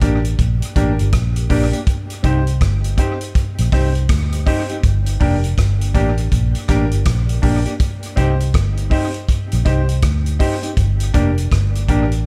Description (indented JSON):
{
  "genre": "roots reggae",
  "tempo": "81 BPM",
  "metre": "4/4",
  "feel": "swing 62% on 16ths",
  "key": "G minor",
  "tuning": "A4 = 440 Hz",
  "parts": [
    { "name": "mellow electric guitar", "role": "accompaniment", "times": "0.0-12.0 s", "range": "Bb3 to G4", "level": "-27 LUFS", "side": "equal", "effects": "tape echo" },
    { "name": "clear upright piano", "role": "stabs", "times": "0.0-12.1 s", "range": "D4 to C5", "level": "-30 LUFS", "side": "equal", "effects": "none" },
    { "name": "vintage muted fingered electric bass", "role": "bass", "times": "0.0-12.2 s", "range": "F1 to D2", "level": "-19 LUFS", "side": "equal", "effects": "none" },
    { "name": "vintage drum kit", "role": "drums", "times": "0.0-12.2 s", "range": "hi-hat, kick drum, rim click", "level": "-21 LUFS", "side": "equal", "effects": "none" }
  ],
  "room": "small room ambience",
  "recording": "echo-heavy mix",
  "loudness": "-17 LUFS",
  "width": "mono",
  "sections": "0.0-12.3 A section",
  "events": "none",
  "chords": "0.0 Gm; 1.9 Cm; 4.8 Gm; 7.8 Cm; 10.8 Gm",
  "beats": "0.39 1.13 | 1.87 2.61 3.35 4.09 | 4.83 5.58 6.32 7.06 | 7.80 8.54 9.29 10.03 | 10.77 11.52"
}